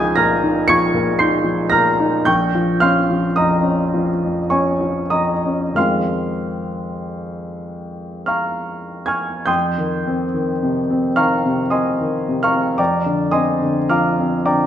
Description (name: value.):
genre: classical, impressionist solo piano.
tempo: 46-60 BPM.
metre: 3/4.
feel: rubato.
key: F minor.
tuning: A4 = 437 Hz.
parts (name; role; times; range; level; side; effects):
clear grand piano; solo; 0.0-14.7 s; Bb1 to Db7; -16 LUFS; equal; none.
room: wet recital hall reverb, RT60 1.6 s.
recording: none.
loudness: -16 LUFS.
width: side -10 dB against mid.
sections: 0.0-9.5 A section; 9.5-14.7 B section.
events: none.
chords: 0.0 Ebadd9/Db; 2.3 Bbm6; 5.8 Fm7; 9.5 Fm9; 12.8 Bb69/F.